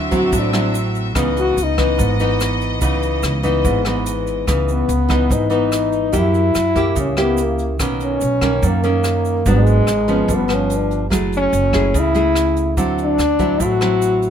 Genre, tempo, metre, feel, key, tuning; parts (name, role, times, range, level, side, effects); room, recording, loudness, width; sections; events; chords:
bossa nova; 145 BPM; 4/4; straight; C# minor; A4 = 439 Hz
nylon-string guitar; accompaniment; 0.0-14.3 s; F#2 to G#4; -20 LUFS; equal
warm studio string section; sustained chords; 0.0-4.4 s; B3 to E5; -26 LUFS; left 1 dB
upright bass; bass; 0.0-14.3 s; F#1 to F#2; -21 LUFS; equal
jazz brush drum kit; drums; 0.1-14.3 s; hi-hat, kick drum, rim click; -25 LUFS; equal
egg shaker; percussion; 0.1-14.3 s; -32 LUFS; right 12 dB
warm French horn; melody; 0.2-2.0, 4.7-14.3 s; G#3 to F#4; -18 LUFS; left 2 dB
light reverb; -15 LUFS; side -8 dB against mid
0.0-4.5 A section; 4.5-14.3 B section
French horn solo 0.0-4.5
0.0 D9; 1.2 C#m9; 6.1 F#7b9; 7.8 Bmaj9; 9.5 G#m7b5; 10.3 G7#11; 11.1 F#m9; 12.8 D9